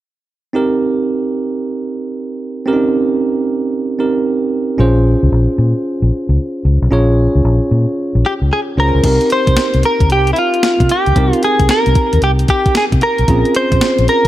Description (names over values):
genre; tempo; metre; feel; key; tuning
R&B, new jack swing; 113 BPM; 4/4; swing 65% on 16ths; unclear; A4 = 440 Hz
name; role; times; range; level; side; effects
bell-like tine electric piano; accompaniment; 0.5-14.3 s; C4 to Db5; -17 LUFS; right 2 dB; none
vintage muted fingered electric bass; bass; 4.8-14.3 s; Bb1 to C3; -13 LUFS; left 1 dB; none
direct-recorded clean electric guitar; melody; 8.3-14.3 s; E4 to C5; -14 LUFS; equal; analog chorus
crisp 8-bit digital drum machine; drums; 9.0-14.3 s; crash cymbal, hi-hat, kick drum, snare drum; -16 LUFS; equal; overdrive, gated reverb
room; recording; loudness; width
light reverb, digital ambience; none; -12 LUFS; side -14 dB against mid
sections
0.5-9.0 A section; 9.0-14.3 B section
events
none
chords
0.5 Cm7; 4.8 Bbm9; 9.0 Cm7; 13.3 Bbm9